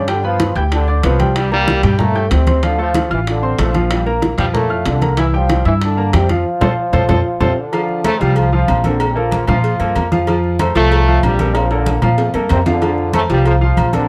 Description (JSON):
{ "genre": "latin, salsa", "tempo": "188 BPM", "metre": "4/4", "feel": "straight", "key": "unclear", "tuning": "A4 = 440 Hz", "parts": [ { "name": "clear trombone section", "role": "melody", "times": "0.0-14.1 s", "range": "G2 to F4", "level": "-22 LUFS", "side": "equal", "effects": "none" }, { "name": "warm upright piano", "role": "accompaniment", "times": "0.0-14.1 s", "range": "E3 to G6", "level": "-21 LUFS", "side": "equal", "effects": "none" }, { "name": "upright bass", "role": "bass", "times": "0.0-14.1 s", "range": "A1 to Bb2", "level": "-19 LUFS", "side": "equal", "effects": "none" }, { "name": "bongos and cowbell", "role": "percussion", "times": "0.1-14.1 s", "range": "none", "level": "-27 LUFS", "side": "equal", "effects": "none" }, { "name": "congas", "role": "percussion", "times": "0.1-14.1 s", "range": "none", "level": "-24 LUFS", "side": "equal", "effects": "none" }, { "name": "timbales and agogo bells", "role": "percussion", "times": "0.1-14.1 s", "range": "none", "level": "-27 LUFS", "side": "equal", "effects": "none" } ], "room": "light reverb", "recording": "none", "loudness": "-15 LUFS", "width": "mono", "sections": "0.0-7.7 A section; 7.7-14.1 B section", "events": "band accent 6.5-7.7; drum fill 6.8-7.7, 11.6-12.8", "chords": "0.1 G7; 1.4 Csus2; 2.6 Dm7; 3.9 Bb6; 5.2 C7; 6.5 F6; 7.7 Bbmaj7; 10.3 F; 11.6 Bbmaj7" }